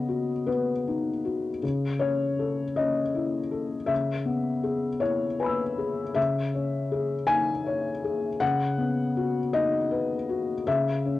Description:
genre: neoclassical minimalist piano.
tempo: 53 BPM (dotted quarters).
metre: 6/8.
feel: rubato.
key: unclear.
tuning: A4 = 440 Hz.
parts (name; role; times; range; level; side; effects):
felt-muted upright piano; solo; 0.0-11.2 s; C#3 to E6; -25 LUFS; left 3 dB; cassette tape.
room: moderate studio reverb, RT60 0.5 s.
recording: home recording on cassette.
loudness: -25 LUFS.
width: side -15 dB against mid.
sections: 0.0-11.2 A section.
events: none.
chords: 0.0 Badd9/C#; 1.6 A/C#; 3.9 E6/C#; 6.2 C#madd9; 8.4 Badd9/C#; 10.7 A/C# (rootless).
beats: 0.48 | 1.62 2.77 | 3.91 5.04 | 6.16 7.29 | 8.42 9.54 | 10.66.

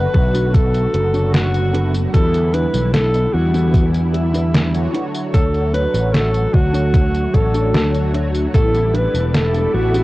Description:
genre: vaporwave.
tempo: 75 BPM.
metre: 4/4.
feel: straight.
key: D major.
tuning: A4 = 441 Hz.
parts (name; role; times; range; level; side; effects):
breathy alto saxophone; melody; 0.0-10.0 s; E4 to B4; -21 LUFS; equal; cassette tape, tape echo.
mellow synth brass; accompaniment; 0.0-10.0 s; D3 to C#5; -24 LUFS; equal; phaser, ensemble chorus, cassette tape, tape echo.
fretless electric bass; bass; 0.0-10.0 s; E1 to E2; -18 LUFS; equal; tube saturation.
mellow electric guitar; riff; 0.1-10.0 s; D4 to A5; -27 LUFS; right 1 dB; analog chorus, cassette tape.
electronic kick drum; drums; 0.1-8.7 s; none; -15 LUFS; equal; small room ambience, cassette tape.
detuned 8-bit digital drum machine; drums; 0.3-10.0 s; hi-hat, snare drum, tambourine; -20 LUFS; equal; small room ambience, cassette tape.
soft string machine; sustained chords; 9.0-10.0 s; A4 to D6; -30 LUFS; left 1 dB; ensemble chorus, cassette tape.
room: moderate booth ambience, RT60 0.2 s.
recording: home recording on cassette.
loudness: -14 LUFS.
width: side -18 dB against mid.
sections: 0.0-10.0 A section.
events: clean electric guitar fill 7.3-8.5.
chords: 0.0 Bm7; 2.1 Em7; 4.9 Dmaj7; 8.5 A9sus4.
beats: 0.54 1.34 | 2.14 2.94 3.74 4.54 | 5.34 6.14 6.94 7.74 | 8.54 9.34.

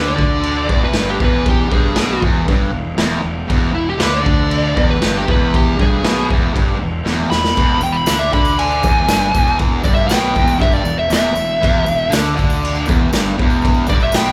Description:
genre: garage rock duo or trio.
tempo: 118 BPM.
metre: 4/4.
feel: straight.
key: unclear.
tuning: A4 = 438 Hz.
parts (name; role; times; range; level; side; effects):
fuzz lead guitar; melody; 0.0-14.3 s; E4 to B5; -21 LUFS; equal; distortion.
fuzz guitar; riff; 0.0-14.3 s; E2 to D3; -21 LUFS; equal; distortion.
fuzz fingered electric bass; bass; 0.0-14.3 s; E1 to D2; -26 LUFS; equal; overdrive.
raw garage drum kit; drums; 0.2-14.3 s; crash cymbal, kick drum, snare drum; -19 LUFS; equal; none.
tambourine; percussion; 7.6-14.3 s; none; -37 LUFS; equal; none.
room: moderate large studio reverb, RT60 1.1 s.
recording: band playing live in one room.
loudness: -16 LUFS.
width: mono.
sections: 0.0-14.3 A section.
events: lead electric guitar solo 0.0-14.3; drum fill 7.1-7.6.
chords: 0.0 E5.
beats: 0.43 0.94 | 1.45 1.96 2.47 2.98 | 3.49 4.00 4.51 5.02 | 5.53 6.04 6.55 7.06 | 7.56 8.07 8.58 9.08 | 9.59 10.10 10.60 11.11 | 11.61 12.12 12.62 13.13 | 13.63 14.14.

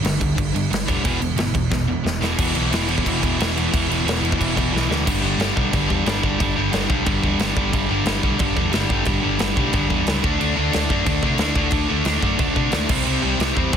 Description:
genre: punk rock.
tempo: 180 BPM.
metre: 4/4.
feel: straight.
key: G major.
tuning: A4 = 440 Hz.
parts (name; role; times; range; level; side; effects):
distorted electric guitar; riff; 0.0-13.8 s; E2 to D4; -23 LUFS; right 10 dB; distortion.
sludgy distorted guitar; riff; 0.0-13.8 s; E2 to D4; -24 LUFS; left 14 dB; overdrive.
overdriven picked electric bass; bass; 0.0-13.8 s; E1 to C3; -26 LUFS; equal; none.
big rock drum kit; drums; 0.0-13.8 s; crash cymbal, kick drum, snare drum; -23 LUFS; equal; none.
room: little or no reverb.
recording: dense, heavily limited modern master.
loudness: -18 LUFS.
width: side -8 dB against mid.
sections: 0.0-2.4 A section; 2.4-5.1 B section; 5.1-13.8 C section.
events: drum fill 1.7-2.4, 4.7-5.1.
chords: 0.0 G5; 1.0 E5; 5.1 G5; 10.2 D5; 12.9 C5.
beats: 0.04 0.37 0.71 | 1.04 1.38 1.71 2.05 | 2.38 2.72 3.05 3.39 | 3.72 4.06 4.39 4.72 | 5.06 5.39 5.73 6.06 | 6.39 6.73 7.06 7.40 | 7.73 8.06 8.40 8.73 | 9.06 9.40 9.73 10.06 | 10.39 10.73 11.06 11.39 | 11.73 12.06 12.39 12.72 | 13.06 13.39 13.72.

